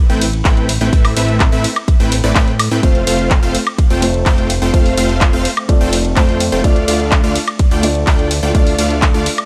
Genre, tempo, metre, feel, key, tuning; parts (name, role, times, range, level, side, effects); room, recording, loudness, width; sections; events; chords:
EDM, festival progressive house; 126 BPM; 4/4; straight; A4 = 437 Hz
supersaw stab; riff; 0.1-9.3 s; A3 to G5; -20 LUFS; equal; sidechain pumping, dub echo
fat analog bass; bass; 0.1-9.3 s; F1 to A2; -21 LUFS; equal; tube saturation, sidechain pumping
house drum kit; drums; 0.1-9.5 s; handclaps, hi-hat, ride cymbal, woodblock; -22 LUFS; equal
electronic kick drum; drums; 0.5-9.1 s; -15 LUFS; equal
felt-muted upright piano; accompaniment; 2.8-9.5 s; A3 to D5; -23 LUFS; equal; sidechain pumping, dub echo
digital ambience; -14 LUFS; mono
0.0-9.5 A section
0.0 Amadd9; 2.8 F; 6.6 Dm